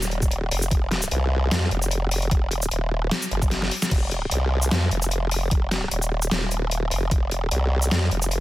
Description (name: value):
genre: heavy wobble dubstep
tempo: 150 BPM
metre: 4/4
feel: swing 54% on 16ths, half-time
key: unclear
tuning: A4 = 439 Hz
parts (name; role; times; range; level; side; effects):
- formant-sweep wobble bass; bass; 0.0-8.4 s; Eb1 to F2; -23 LUFS; equal; chorus, overdrive
- dubstep drum kit; drums; 0.0-8.4 s; crash cymbal, hi-hat, shaker, snare drum; -26 LUFS; left 1 dB; overdrive
- electronic kick drum; drums; 0.2-7.2 s; none; -21 LUFS; equal; overdrive
room: digital ambience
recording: dense, heavily limited modern master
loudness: -21 LUFS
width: side -16 dB against mid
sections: 0.0-3.9 A section; 3.9-8.4 A section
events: drop 0.0-3.9, 3.9-8.4; kick drops out 3.5-3.9; drum fill 3.5-3.9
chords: none